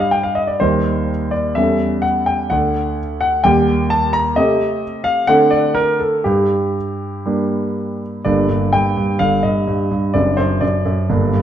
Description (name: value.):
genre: classical-period piano sonatina.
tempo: 119-132 BPM.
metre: 4/4.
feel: rubato.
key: G minor.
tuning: A4 = 444 Hz.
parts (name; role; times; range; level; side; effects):
warm concert grand piano; solo; 0.0-11.4 s; F#1 to Bb5; -14 LUFS; equal; none.
room: wet recital hall reverb, RT60 1.4 s.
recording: dark, warm production.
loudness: -14 LUFS.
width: side -10 dB against mid.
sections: 0.0-8.2 A section; 8.2-11.4 B section.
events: none.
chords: 0.0 G5; 0.6 Eb; 1.6 A7/E; 2.5 D; 3.4 Eb; 4.4 Am7b5/C; 5.3 D5; 6.3 Gm; 10.1 D7/F#.